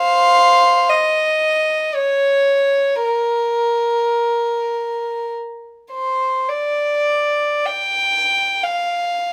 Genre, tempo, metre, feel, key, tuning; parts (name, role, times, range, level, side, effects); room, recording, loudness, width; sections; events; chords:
classical, free, expressive piece for unaccompanied violin; free time; A4 = 439 Hz
rich violin; solo; 0.0-9.3 s; Bb4 to G5; -18 LUFS; equal
light reverb; -18 LUFS; mono
0.0-9.3 A section